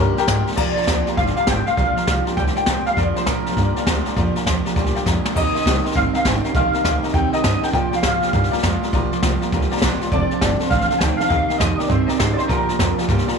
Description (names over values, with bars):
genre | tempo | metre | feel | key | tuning
rockabilly | 202 BPM | 4/4 | swing 64% on 8ths | Bb mixolydian | A4 = 442 Hz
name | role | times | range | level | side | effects
bright upright piano | accompaniment | 0.0-13.3 s | G4 to C6 | -29 LUFS | left 12 dB | none
picked steel-string acoustic guitar | accompaniment | 0.0-13.4 s | Bb2 to Bb4 | -28 LUFS | left 12 dB | none
electric guitar through a small old amp | riff | 0.0-13.4 s | F2 to Db4 | -25 LUFS | right 14 dB | none
upright bass | bass | 0.0-13.3 s | F1 to Bb2 | -23 LUFS | equal | none
jazz brush drum kit | drums | 0.2-13.4 s | crash cymbal, hi-hat, kick drum, snare drum | -21 LUFS | equal | none
electric guitar through a small old amp | melody | 0.6-13.4 s | Bb4 to G5 | -22 LUFS | left 1 dB | ensemble chorus, tape echo
room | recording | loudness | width
light reverb, small room ambience | 1960s-style stereo with parts hard left and right | -16 LUFS | side -5 dB against mid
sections
0.6-13.4 A section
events
drum fill 5.1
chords
0.0 Bb6; 5.4 Eb6; 7.7 Bb6; 10.1 F6; 11.3 Eb6; 12.5 Bb6